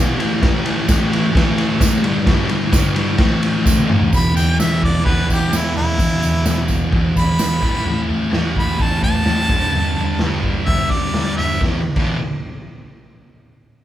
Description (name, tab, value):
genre	garage rock duo or trio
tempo	128 BPM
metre	4/4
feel	straight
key	unclear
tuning	A4 = 440 Hz
part	thick fuzz guitar	riff	0.0-12.2 s	E2 to A3	-18 LUFS	left 1 dB	distortion
part	raw garage drum kit	drums	0.2-12.1 s	crash cymbal, kick drum, ride cymbal, snare drum, toms	-18 LUFS	equal	none
part	tambourine	percussion	0.9-7.7 s	none	-30 LUFS	right 4 dB	none
part	bright harmonica	melody	4.2-11.6 s	E4 to B5	-22 LUFS	equal	overdrive
room	light reverb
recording	band playing live in one room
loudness	-15 LUFS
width	side -12 dB against mid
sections	0.0-4.1 A section; 4.1-11.6 B section; 11.6-13.5 C section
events	drum fill 3.7-4.1; harmonica solo 4.1-11.6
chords	0.2 A5; 2.0 G5; 3.2 A5; 4.1 E5; 7.6 A5; 9.5 G5; 11.6 E5